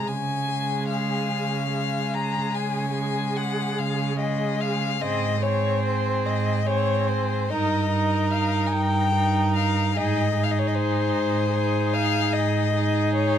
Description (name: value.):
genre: classical, slow romantic movement for string quartet.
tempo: 49 BPM (dotted quarters).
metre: 12/8.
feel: rubato.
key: Db major.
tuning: A4 = 440 Hz.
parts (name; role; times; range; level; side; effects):
rich violin; melody; 0.0-13.4 s; C5 to Bb5; -27 LUFS; left 6 dB; none.
rich violin; second line; 0.0-13.4 s; Ab4 to Bb4; -30 LUFS; left 2 dB; none.
rich viola; accompaniment; 0.0-13.4 s; Ab3 to Eb4; -28 LUFS; right 2 dB; none.
warm cello; bass; 0.1-13.4 s; G2 to Db3; -26 LUFS; right 3 dB; none.
room: light reverb.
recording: close, detailed microphones.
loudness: -21 LUFS.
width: side -9 dB against mid.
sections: 0.0-13.4 A section.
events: none.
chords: 0.1 Db; 5.0 Ab; 7.5 Eb/G; 10.0 Ab.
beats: | 0.07 1.31 2.54 3.78 | 5.01 6.25 7.50 8.73 | 9.97 11.14 12.34.